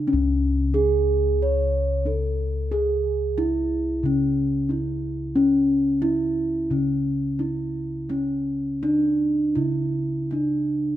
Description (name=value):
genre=Javanese gamelan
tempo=90 BPM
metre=4/4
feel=uneven beats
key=C# pelog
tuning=A4 = 440 Hz
part: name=gamelan-type bronze metallophone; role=melody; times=0.0-11.0 s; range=C#4 to C#5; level=-23 LUFS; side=right 1 dB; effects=none
part: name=gamelan-type bossed gongs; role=bass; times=0.0-11.0 s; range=C#2 to G#4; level=-25 LUFS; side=left 1 dB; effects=none
room=light reverb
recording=none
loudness=-21 LUFS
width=side -12 dB against mid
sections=0.1-11.0 A section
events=none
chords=none